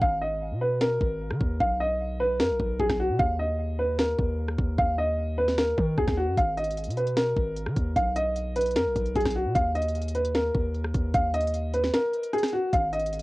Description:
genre	hip hop, trap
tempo	151 BPM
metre	4/4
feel	half-time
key	Eb minor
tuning	A4 = 442 Hz
part	warm baby grand piano	melody	0.0-13.2 s	F#4 to F5	-26 LUFS	equal	low-pass filter, cassette tape
part	hard-hitting 808-style bass	bass	0.0-13.2 s	Ab1 to Eb3	-30 LUFS	equal	none
part	garage drum kit	drums	0.0-13.2 s	hi-hat, kick drum, rim click, snare drum	-29 LUFS	equal	vintage 12-bit sampler grit
room	light reverb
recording	home recording on cassette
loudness	-24 LUFS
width	side -20 dB against mid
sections	0.0-13.2 A section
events	break 0.0-6.4; kick muted 11.9-12.7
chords	0.0 Abm; 1.6 B; 3.2 Eb5; 6.4 Abm; 8.0 B; 9.6 Eb5

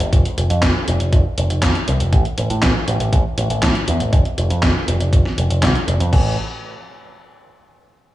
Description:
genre	italo disco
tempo	120 BPM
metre	4/4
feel	straight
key	unclear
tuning	A4 = 440 Hz
part	picked electric bass with an envelope filter	bass	0.0-6.4 s	F1 to A2	-18 LUFS	equal	tape echo
part	clean 12-bit digital drum machine	drums	0.0-6.2 s	crash cymbal, handclaps, hi-hat, snare drum	-22 LUFS	equal	gated reverb
part	electronic kick drum	drums	0.1-6.2 s	none	-17 LUFS	equal	none
room	light reverb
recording	small room ambience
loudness	-15 LUFS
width	side -15 dB against mid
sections	0.0-6.1 A section; 6.1-8.1 B section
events	none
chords	none

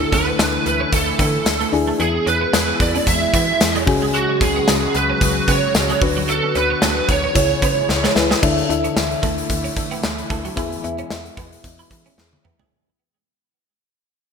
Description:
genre	1980s-style pop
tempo	112 BPM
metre	4/4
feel	swing 55% on 16ths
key	unclear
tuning	A4 = 442 Hz
part	lead guitar through a small cranked amp	melody	0.0-8.1 s	F#4 to E5	-20 LUFS	right 4 dB	overdrive, ensemble chorus, digital delay
part	mellow FM electric piano	accompaniment	0.0-12.7 s	C#3 to E5	-23 LUFS	left 5 dB	chorus
part	phased analog pad	sustained chords	0.0-12.7 s	B2 to F#4	-27 LUFS	right 1 dB	phaser, chorus
part	twelve-string electric guitar	riff	0.0-12.7 s	F#3 to E4	-28 LUFS	right 7 dB	ensemble chorus, digital delay
part	slap-like FM bass	bass	0.0-12.6 s	C#2 to E3	-26 LUFS	equal	none
part	gated 80s drum kit	drums	0.1-12.7 s	crash cymbal, hi-hat, kick drum, snare drum, tambourine, toms	-20 LUFS	left 1 dB	none
room	moderate plate reverb, RT60 1.8 s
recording	bright 1980s-style digital production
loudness	-16 LUFS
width	side -6 dB against mid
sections	0.0-8.4 A section; 8.4-12.7 B section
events	drum fill 7.9-8.4, 12.2-12.7; fade-out 8.4-12.7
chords	0.0 Dsus2; 2.0 E; 3.9 C#sus4; 6.0 Bm/D; 7.4 C#m; 8.4 Dsus2; 10.6 E

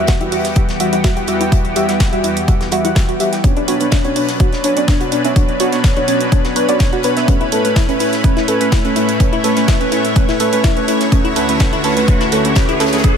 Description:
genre	progressive house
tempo	125 BPM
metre	4/4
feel	straight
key	E dorian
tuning	A4 = 440 Hz
part	lush unison pad	sustained chords	0.0-13.2 s	D2 to D5	-20 LUFS	left 1 dB	chorus, sidechain pumping
part	deep mellow chord stab	stabs	0.0-13.2 s	G3 to G5	-18 LUFS	right 2 dB	chorus, sidechain pumping, ping-pong delay
part	glassy wavetable pluck	arpeggios	0.1-13.1 s	C#4 to B4	-20 LUFS	left 1 dB	chorus, sidechain pumping, ping-pong delay
part	electronic kick drum	drums	0.1-13.1 s	none	-14 LUFS	equal	none
part	house drum kit	drums	0.1-13.1 s	hi-hat, snare drum	-25 LUFS	right 3 dB	high-pass filter on hats, high-pass filter on snare, high-pass filter on room
part	modern studio drum kit	drums	0.1-13.2 s	hi-hat, snare drum	-30 LUFS	left 4 dB	sidechain pumping on hats, high-pass filter on hats, high-pass filter on snare, high-pass filter on room
part	riser	sound effects	9.8-13.2 s	none	-27 LUFS	left 1 dB	none
room	light reverb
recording	none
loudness	-12 LUFS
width	side -7 dB against mid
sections	0.0-13.2 A section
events	build-up 0.0-13.2; filter sweep on synth arpeggio sound 0.0-13.2; riser 9.8-13.2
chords	0.0 Emadd9; 3.4 Bmadd9; 7.3 Aadd9; 11.1 Dmaj7

